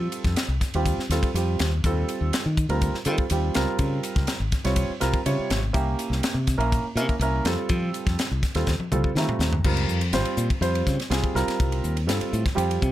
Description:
electric jazz fusion; 123 BPM; 4/4; straight; A4 = 440 Hz
dark baby grand piano; accompaniment; 0.0-12.9 s; C3 to Bb5; -27 LUFS; right 3 dB
modern bright fingered electric bass; bass; 0.0-12.9 s; Ab1 to F3; -25 LUFS; left 1 dB
crisp fusion drum kit; drums; 0.1-12.9 s; crash cymbal, hi-hat, kick drum, ride cymbal, snare drum, toms; -26 LUFS; left 1 dB
little or no reverb; -22 LUFS; side -13 dB against mid
0.0-9.7 A section; 9.7-12.9 B section
drum fill 8.7-9.7; grand piano fill 8.9-9.7, 12.6-12.9
0.0 F9; 1.8 Ebadd9; 3.5 Dbmaj7; 5.7 C7b9; 7.5 F9; 9.7 Dbmaj7; 11.4 Cm7

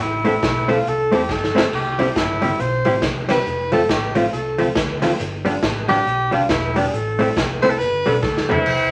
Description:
ska; 138 BPM; 4/4; swing 61% on 8ths; A4 = 435 Hz
breathy tenor saxophone; melody; 0.0-8.5 s; D4 to C5; -23 LUFS; equal
picked electric bass; bass; 0.0-8.9 s; E1 to E2; -30 LUFS; equal
hollow-body jazz guitar; accompaniment; 0.2-8.6 s; F3 to A4; -22 LUFS; equal; tape echo
raw garage drum kit; drums; 0.2-8.8 s; crash cymbal, hi-hat, kick drum, snare drum, splash cymbal, toms; -26 LUFS; equal
clear horn section; melody; 8.5-8.9 s; E3 to E4; -20 LUFS; equal
wet studio reverb, RT60 0.5 s; vinyl crackle; -19 LUFS; mono
0.0-8.7 A section
tenor saxophone solo 0.0-8.7; drum fill 1.3-1.7, 8.2-8.7
0.0 Am; 3.5 F; 5.2 G; 6.9 Am; 7.8 Gadd9

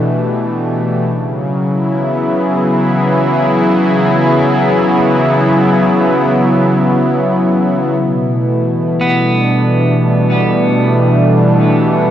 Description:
ambient; free time; A4 = 440 Hz
warm analog pad; sustained chords; 0.0-12.1 s; B2 to G#4; -11 LUFS; equal; chorus
bowed-like drone; drone; 1.8-8.1 s; E3; -24 LUFS; right 1 dB; built-in reverb, phaser
electric guitar at the edge of break-up; arpeggios; 9.0-12.1 s; B3; -18 LUFS; right 1 dB; diffuse ambient delay
wet concert hall reverb, RT60 2.1 s; worn, warbling old tape, cassette tape, warbly pitch drift; -10 LUFS; side -10 dB against mid
0.0-8.0 A section; 8.0-12.1 B section
0.0 Em; 1.0 C#m7; 8.0 Em

